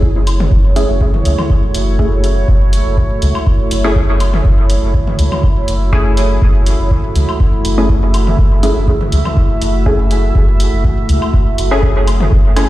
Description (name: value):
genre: dub techno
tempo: 122 BPM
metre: 4/4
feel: swing 53% on 16ths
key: F# minor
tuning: A4 = 441 Hz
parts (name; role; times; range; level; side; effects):
- deep dark ambient pad; sustained chords; 0.0-12.7 s; A3 to E5; -20 LUFS; right 1 dB; chorus, built-in reverb, sidechain pumping
- filtered dub chord stab; stabs; 0.0-12.7 s; A3 to G#4; -20 LUFS; equal; chorus, phaser, sidechain pumping, dub echo
- warm sub bass; bass; 0.0-12.6 s; F#1 to C#2; -14 LUFS; equal; sidechain pumping
- electronic kick drum; drums; 0.0-12.4 s; none; -13 LUFS; equal; none
- electronic hi-hat; drums; 0.3-12.7 s; none; -27 LUFS; equal; overdrive
- electronic woodblock and toms; percussion; 0.3-12.7 s; none; -24 LUFS; left 1 dB; sidechain pumping on perc, sidechain pumping on toms, dub echo
room: digital ambience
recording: played on a big sound system in a bare room, stone room reverb, vinyl crackle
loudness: -11 LUFS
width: side -16 dB against mid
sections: 0.0-12.7 A section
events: none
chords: 0.0 F#m7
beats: 0.03 | 0.52 1.01 1.50 1.99 | 2.48 2.98 3.47 3.96 | 4.45 4.94 5.43 5.93 | 6.42 6.91 7.40 7.89 | 8.38 8.88 9.37 9.86 | 10.35 10.84 11.34 11.83 | 12.32